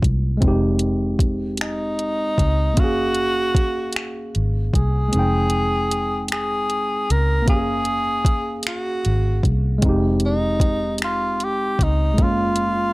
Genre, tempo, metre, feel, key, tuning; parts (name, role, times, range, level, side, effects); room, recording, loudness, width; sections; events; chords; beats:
slow six-eight R&B; 51 BPM (dotted quarters); 6/8; straight; A4 = 439 Hz
tine electric piano; accompaniment; 0.0-12.9 s; Ab3 to G5; -24 LUFS; equal
vintage muted fingered electric bass; bass; 0.0-12.9 s; F1 to Db2; -22 LUFS; equal
smooth R&B drum kit; drums; 0.0-12.7 s; finger snaps, hi-hat, kick drum; -20 LUFS; equal
breathy tenor saxophone; melody; 1.6-12.9 s; Eb4 to Bb4; -22 LUFS; equal
little or no reverb; dry, gritty hardware recording; -18 LUFS; side -22 dB against mid
0.0-12.9 A section
kick muted 5.1-7.5
0.4 Fm9; 2.8 Gbmaj9; 5.1 Fm9; 7.5 Gbmaj9; 9.8 Fm9; 12.2 Gbmaj9
| 0.42 1.59 | 2.77 3.95 | 5.12 6.30 | 7.48 8.65 | 9.83 11.01 | 12.18